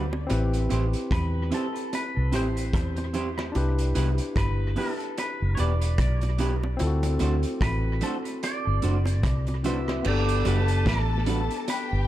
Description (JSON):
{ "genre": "lovers rock reggae", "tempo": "74 BPM", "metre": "4/4", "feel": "swing 58% on 16ths", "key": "G major", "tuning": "A4 = 440 Hz", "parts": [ { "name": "twangy electric guitar", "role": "melody", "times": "0.0-12.1 s", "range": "A4 to E5", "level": "-34 LUFS", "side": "right 1 dB", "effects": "phaser, tape echo" }, { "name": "barky tine electric piano", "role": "accompaniment", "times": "0.0-12.1 s", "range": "B3 to C5", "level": "-32 LUFS", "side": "left 3 dB", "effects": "overdrive, tape echo" }, { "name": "electric guitar through a small old amp", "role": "stabs", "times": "0.0-11.4 s", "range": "G3 to C5", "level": "-33 LUFS", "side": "right 4 dB", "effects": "none" }, { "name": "vintage muted fingered electric bass", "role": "bass", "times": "0.0-12.1 s", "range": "E1 to E2", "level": "-25 LUFS", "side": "equal", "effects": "none" }, { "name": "bongos", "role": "percussion", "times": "0.1-11.9 s", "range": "none", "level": "-37 LUFS", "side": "right 2 dB", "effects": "none" }, { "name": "vintage drum kit", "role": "drums", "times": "0.3-11.9 s", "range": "crash cymbal, hi-hat, kick drum, rim click, snare drum", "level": "-31 LUFS", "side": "equal", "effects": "tape echo" }, { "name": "warm studio string section", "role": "second line", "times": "10.0-12.1 s", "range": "G4 to A5", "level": "-32 LUFS", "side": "left 1 dB", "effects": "tape echo" } ], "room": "light reverb, studio reverb", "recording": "dark, warm production", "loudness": "-23 LUFS", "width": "side -14 dB against mid", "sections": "0.0-10.0 A section; 10.0-12.1 B section", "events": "none", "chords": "0.3 Am7; 3.5 Cmaj7; 6.8 D7; 10.0 Gmaj7" }